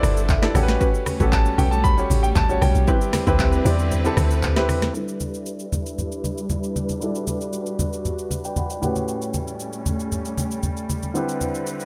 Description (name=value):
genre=amapiano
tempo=116 BPM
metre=4/4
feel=straight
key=G major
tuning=A4 = 440 Hz
part: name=warm grand piano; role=accompaniment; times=0.0-11.9 s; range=A2 to B5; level=-29 LUFS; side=equal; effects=low-pass filter
part: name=clear studio string section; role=sustained chords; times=0.0-11.9 s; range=D3 to B4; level=-32 LUFS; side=equal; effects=sidechain pumping, low-pass filter
part: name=deep log drum bass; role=bass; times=0.0-4.9 s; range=G1 to E2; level=-23 LUFS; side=equal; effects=none
part: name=afro-pop drum kit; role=drums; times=0.0-11.9 s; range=handclaps, hi-hat, kick drum, rim click, shaker, snare drum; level=-27 LUFS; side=equal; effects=none
part: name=congas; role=percussion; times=0.0-11.5 s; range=none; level=-30 LUFS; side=equal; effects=none
part: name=punchy chord stab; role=stabs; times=0.4-4.7 s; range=C4 to B4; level=-32 LUFS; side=equal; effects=none
part: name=clear baby grand piano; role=melody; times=1.3-4.4 s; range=G5 to B5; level=-28 LUFS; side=equal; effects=digital delay
room=small room ambience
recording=none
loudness=-22 LUFS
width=mono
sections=0.0-4.9 A section; 4.9-11.9 B section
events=drop 0.0-4.9; grand piano fill 0.0-0.8; kick muted 3.9-4.9; filter sweep 4.9-11.9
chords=0.0 G6; 0.6 A13; 2.9 D13sus4; 4.9 G6; 8.8 A13; 11.2 D13sus4